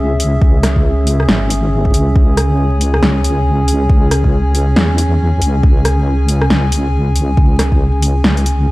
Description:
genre	deep dubstep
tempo	138 BPM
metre	4/4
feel	swing 60% on 16ths, half-time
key	C# minor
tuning	A4 = 439 Hz
part	dark analog pad	sustained chords	0.0-8.7 s	C#4 to G#5	-19 LUFS	equal	chorus
part	deep soft wobble bass	bass	0.0-8.7 s	G#1 to E2	-14 LUFS	equal	chorus
part	deep house drum kit	drums	0.2-8.6 s	hi-hat, rim click, snare drum	-17 LUFS	equal	overdrive
part	electronic kick drum	drums	0.4-7.8 s	none	-12 LUFS	equal	overdrive
room	light reverb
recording	vinyl crackle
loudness	-11 LUFS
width	side -19 dB against mid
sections	0.0-8.7 A section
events	none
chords	0.0 C#m

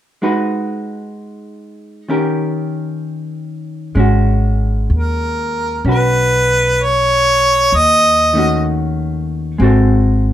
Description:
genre	jazz ballad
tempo	64 BPM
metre	4/4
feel	swing 67% on 8ths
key	G# minor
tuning	A4 = 442 Hz
part	vintage hollow-body jazz guitar	accompaniment	0.2-10.3 s	D#3 to B4	-18 LUFS	left 1 dB	none
part	upright bass	bass	4.0-10.3 s	G#1 to D#2	-16 LUFS	equal	none
part	warm harmonica	melody	5.0-8.7 s	A#4 to D#5	-12 LUFS	equal	none
room	light reverb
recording	none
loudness	-12 LUFS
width	side -11 dB against mid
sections	0.2-4.0 A section; 4.0-10.3 B section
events	none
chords	0.2 G#m7; 2.1 D#7; 4.0 G#m11; 7.7 D#m7b5; 9.6 G#7b9

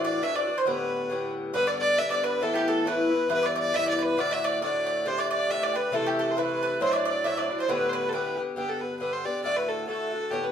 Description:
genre	celtic folk, Celtic polka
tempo	137 BPM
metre	2/4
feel	swing 57% on 8ths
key	G major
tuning	A4 = 440 Hz
part	rich fiddle	melody	0.0-10.5 s	G4 to E5	-27 LUFS	left 1 dB	plate reverb
part	bowl-back mandolin	second line	0.0-8.4 s	G4 to E5	-31 LUFS	right 4 dB	none
part	Irish bouzouki	accompaniment	0.0-10.5 s	G2 to G4	-29 LUFS	left 1 dB	none
room	wet studio reverb, RT60 0.6 s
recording	heard from further back in the room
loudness	-24 LUFS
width	side -8 dB against mid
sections	0.0-1.5 A section; 1.5-8.6 A section; 8.6-10.5 B section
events	none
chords	0.0 Dadd9; 0.7 Gadd9; 1.5 G; 2.4 Asus2; 3.3 Em; 4.2 D; 5.1 Gsus2; 5.9 Am; 6.8 Dadd9; 7.7 Gadd9; 8.6 G; 9.4 D

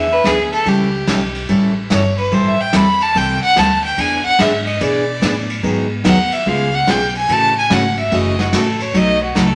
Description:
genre	country, western swing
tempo	145 BPM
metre	4/4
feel	swing 66% on 8ths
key	unclear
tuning	A4 = 440 Hz
part	clear fiddle	melody	0.0-9.6 s	F#4 to B5	-19 LUFS	equal	none
part	picked steel-string acoustic guitar	accompaniment	0.0-9.5 s	B2 to A4	-20 LUFS	equal	none
part	upright bass	bass	0.0-9.6 s	F#1 to B2	-27 LUFS	equal	none
part	vintage brush drum kit	drums	0.2-9.5 s	hi-hat, kick drum, ride cymbal, snare drum	-24 LUFS	equal	none
room	wet studio reverb, RT60 0.9 s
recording	none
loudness	-15 LUFS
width	mono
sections	0.0-9.6 A section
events	fiddle solo 0.0-9.6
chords	0.0 E7; 0.7 A7; 2.3 Am7; 4.0 E7; 5.6 G#m7; 6.5 C#7; 7.3 F#m7; 8.9 B7

